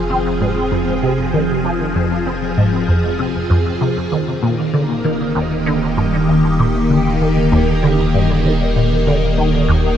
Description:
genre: ambient, sequencer-driven space music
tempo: 97 BPM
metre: 4/4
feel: straight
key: unclear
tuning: A4 = 440 Hz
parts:
  - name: phased string machine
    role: sustained chords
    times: 0.0-10.0 s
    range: Eb3 to F5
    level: -17 LUFS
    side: equal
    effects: ensemble chorus, phaser
  - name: round analog bass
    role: bass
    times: 0.0-10.0 s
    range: Eb1 to F1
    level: -23 LUFS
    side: equal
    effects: none
  - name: resonant blip pluck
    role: riff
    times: 0.1-9.9 s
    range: Eb2 to C4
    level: -18 LUFS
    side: equal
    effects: phaser, ensemble chorus, analog delay
room: moderate huge ambient reverb, RT60 7.9 s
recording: none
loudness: -14 LUFS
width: side -9 dB against mid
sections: 0.0-10.0 A section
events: none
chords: 0.0 Fm; 4.1 Eb

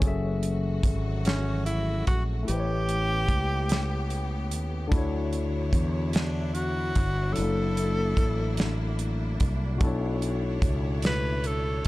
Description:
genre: slow six-eight R&B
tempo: 49 BPM (dotted quarters)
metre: 6/8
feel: straight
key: F# minor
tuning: A4 = 439 Hz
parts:
  - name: barky tine electric piano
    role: accompaniment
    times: 0.0-11.9 s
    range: B2 to E5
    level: -32 LUFS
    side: left 4 dB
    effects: none
  - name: bright studio string section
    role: sustained chords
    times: 0.0-11.9 s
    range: C#3 to C#5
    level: -38 LUFS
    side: equal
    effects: none
  - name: fretless electric bass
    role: bass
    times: 0.0-11.8 s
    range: F#1 to E2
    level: -28 LUFS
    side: equal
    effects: none
  - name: damped 70s drum kit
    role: drums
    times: 0.0-11.9 s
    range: hi-hat, kick drum, snare drum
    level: -26 LUFS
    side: equal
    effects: none
  - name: breathy tenor saxophone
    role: melody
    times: 1.3-11.9 s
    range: C#4 to B4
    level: -31 LUFS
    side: equal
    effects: none
room: little or no reverb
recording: dark, warm production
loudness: -24 LUFS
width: side -18 dB against mid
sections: 0.0-11.9 A section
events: none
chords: 0.0 F#m9; 2.5 A9; 4.9 Dmaj9; 7.4 F#7alt; 9.8 Bm11

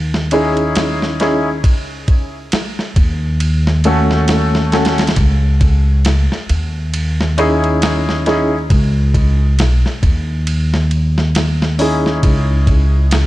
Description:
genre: trip hop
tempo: 68 BPM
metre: 4/4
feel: swing 58% on 16ths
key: C# minor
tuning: A4 = 440 Hz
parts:
  - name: upright bass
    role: bass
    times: 0.0-13.3 s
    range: B1 to D#2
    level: -15 LUFS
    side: equal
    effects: none
  - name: dusty soul sampler-style drum kit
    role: drums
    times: 0.1-13.3 s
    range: hi-hat, kick drum, ride cymbal, snare drum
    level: -18 LUFS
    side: equal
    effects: none
  - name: felt-muted upright piano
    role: accompaniment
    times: 0.3-13.3 s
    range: A3 to A4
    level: -17 LUFS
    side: left 1 dB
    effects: harmonic tremolo, tape echo
room: studio reverb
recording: dark, warm production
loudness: -12 LUFS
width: side -16 dB against mid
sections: 0.0-13.3 A section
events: none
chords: 0.0 C#madd9; 1.6 F#m; 5.2 C#madd9; 8.7 Badd9 (rootless); 12.2 C#madd9

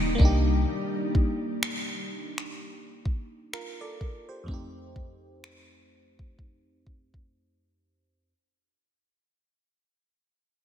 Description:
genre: contemporary R&B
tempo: 63 BPM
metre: 4/4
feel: swing 58% on 16ths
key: unclear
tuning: A4 = 440 Hz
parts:
  - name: FM electric piano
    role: accompaniment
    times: 0.0-8.3 s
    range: F2 to D5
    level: -34 LUFS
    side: right 1 dB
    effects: chorus, phaser
  - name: ethereal airy pad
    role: sustained chords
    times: 0.0-0.7 s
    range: C3 to Eb4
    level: -32 LUFS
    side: left 2 dB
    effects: ensemble chorus, built-in reverb, sidechain pumping
  - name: soft 808-style bass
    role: bass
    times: 0.0-0.7 s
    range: Eb1 to C2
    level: -23 LUFS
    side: equal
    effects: none
  - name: smooth R&B drum kit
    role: drums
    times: 0.2-7.3 s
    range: finger snaps, kick drum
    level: -28 LUFS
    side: equal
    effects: none
room: moderate lush hall reverb, RT60 2.8 s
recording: dreamy mix soaked in reverb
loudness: -26 LUFS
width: side -10 dB against mid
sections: 0.0-8.3 A section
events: fade-out 0.0-8.3; break 7.3-8.3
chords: 0.2 Cm9; 4.5 F9

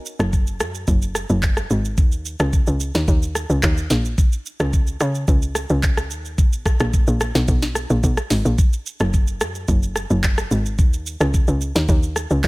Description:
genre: amapiano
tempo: 109 BPM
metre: 4/4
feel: straight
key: F# major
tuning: A4 = 440 Hz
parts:
  - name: afro-pop drum kit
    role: drums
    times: 0.1-12.5 s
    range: handclaps, hi-hat, kick drum, rim click, shaker, snare drum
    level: -19 LUFS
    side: equal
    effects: none
  - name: tight log drum bass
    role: bass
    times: 0.2-12.5 s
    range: F#1 to C#3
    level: -20 LUFS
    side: equal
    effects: none
room: digital ambience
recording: none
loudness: -17 LUFS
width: side -23 dB against mid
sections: 0.0-12.5 A section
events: none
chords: none

